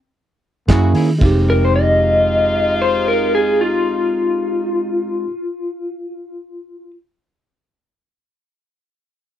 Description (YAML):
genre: straight-eighth soul blues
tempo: 114 BPM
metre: 4/4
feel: swing 56% on 16ths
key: F minor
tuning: A4 = 440 Hz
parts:
  - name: overdriven tine electric piano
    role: accompaniment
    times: 0.7-5.3 s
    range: Ab3 to Ab4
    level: -21 LUFS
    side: right 3 dB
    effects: phaser
  - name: warm horn section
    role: sustained chords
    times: 0.7-5.3 s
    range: Ab3 to Ab4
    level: -26 LUFS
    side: left 2 dB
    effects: none
  - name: vintage muted fingered electric bass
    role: bass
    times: 0.7-5.3 s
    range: F1 to Eb3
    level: -18 LUFS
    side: equal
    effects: none
  - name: cloth-damped thuddy drum kit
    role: drums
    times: 0.7-1.4 s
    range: crash cymbal, hi-hat, kick drum, snare drum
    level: -17 LUFS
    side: equal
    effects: none
  - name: electric guitar through a small old amp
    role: melody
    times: 1.5-6.9 s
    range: F4 to Eb5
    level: -17 LUFS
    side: left 2 dB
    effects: tremolo
room: little or no reverb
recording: dry, close 1970s-style studio recording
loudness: -14 LUFS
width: side -11 dB against mid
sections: 0.0-1.2 A section; 1.2-5.4 B section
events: stop 0.0-0.7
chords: 0.0 N.C.; 0.7 Gb7; 1.2 Fm7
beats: 0.16 0.69 | 1.22 1.74 2.27 2.80 | 3.33 3.85 4.38 4.91